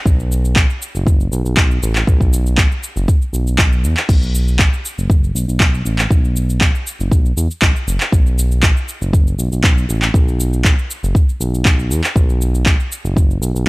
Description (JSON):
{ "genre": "afro house", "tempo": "119 BPM", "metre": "4/4", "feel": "straight", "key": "unclear", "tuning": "A4 = 440 Hz", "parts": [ { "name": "smooth synth bass", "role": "bass", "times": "0.1-13.7 s", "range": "F#1 to E2", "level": "-17 LUFS", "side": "equal", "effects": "sidechain pumping" }, { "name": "deep house drum kit", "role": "drums", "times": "0.1-13.7 s", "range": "crash cymbal, handclaps, shaker", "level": "-19 LUFS", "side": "equal", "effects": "small room ambience" }, { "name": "electronic kick drum", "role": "drums", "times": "0.1-13.3 s", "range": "none", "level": "-13 LUFS", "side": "equal", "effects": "small room ambience" } ], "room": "little or no reverb", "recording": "dry, gritty hardware recording", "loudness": "-13 LUFS", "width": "side -23 dB against mid", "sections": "0.0-13.7 A section", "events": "none", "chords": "none" }